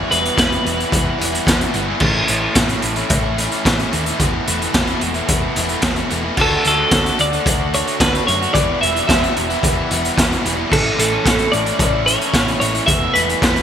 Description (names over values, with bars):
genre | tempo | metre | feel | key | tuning
indie rock | 110 BPM | 4/4 | straight | unclear | A4 = 440 Hz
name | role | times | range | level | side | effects
overdriven electric guitar | riff | 0.0-13.6 s | E2 to F#4 | -24 LUFS | left 9 dB | wide subtle chorus
overdriven electric guitar | riff | 0.0-13.6 s | A2 to F#4 | -23 LUFS | right 7 dB | wide subtle chorus, ping-pong delay
twelve-string electric guitar | melody | 0.1-1.4, 6.4-13.6 s | A4 to E5 | -19 LUFS | equal | ping-pong delay
hollow-body short-scale fingered electric bass | bass | 0.1-13.6 s | E1 to F#2 | -25 LUFS | equal | none
raw garage drum kit | drums | 0.1-13.6 s | crash cymbal, hi-hat, kick drum, snare drum | -18 LUFS | equal | gated reverb
room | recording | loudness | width
light reverb, studio reverb | bright 1980s-style digital production | -14 LUFS | side -9 dB against mid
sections
0.0-13.6 A section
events
none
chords
0.0 Em; 2.0 A; 4.2 Esus4; 6.4 D; 8.5 Em; 10.7 A; 12.9 Esus4